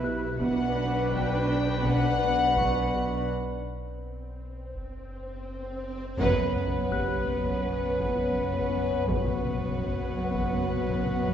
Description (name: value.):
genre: cinematic, suspense film score.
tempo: 83 BPM.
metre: 4/4.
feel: straight.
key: unclear.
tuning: A4 = 438 Hz.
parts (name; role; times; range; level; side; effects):
warm chamber viola section; accompaniment; 0.0-11.3 s; B3 to B4; -33 LUFS; right 1 dB; none.
glass harmonica; sustained chords; 0.0-11.3 s; B4 to C#6; -36 LUFS; equal; none.
dark chamber cello section; riff; 0.0-11.3 s; F#2 to B3; -34 LUFS; right 1 dB; none.
clear chamber double bass section; bass; 0.0-11.3 s; F#1 to B1; -37 LUFS; right 2 dB; none.
warm chamber cello section; bass; 0.0-11.3 s; F#2 to B2; -34 LUFS; right 1 dB; none.
pure sine sub bass; drone; 0.0-11.3 s; F#1 to B1; -37 LUFS; left 1 dB; none.
celesta; texture; 0.0-11.3 s; G4 to F#6; -39 LUFS; left 1 dB; none.
dark symphonic violin section; melody; 0.4-11.3 s; F#5 to G5; -32 LUFS; left 3 dB; none.
taiko ensemble; drums; 0.4-11.3 s; none; -37 LUFS; equal; none.
swell and sub drop; sound effects; 4.1-9.1 s; none; -40 LUFS; equal; none.
warm chamber violin section; second line; 6.2-11.3 s; B4; -32 LUFS; right 1 dB; none.
warm French horn section; sustained chords; 6.2-11.3 s; B3 to F#4; -32 LUFS; left 4 dB; none.
room: wet concert hall reverb, RT60 2.2 s.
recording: heard from further back in the room, nothing above 7.8 kHz.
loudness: -25 LUFS.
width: side -9 dB against mid.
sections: 0.0-6.2 A section; 6.2-11.3 B section.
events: break 3.3-6.2; swell 4.1-6.2; drum fill 5.5-6.2; band accent 6.2-6.9; impact 6.2-9.1.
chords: 0.4 Bm; 3.3 N.C.; 6.2 F#sus4.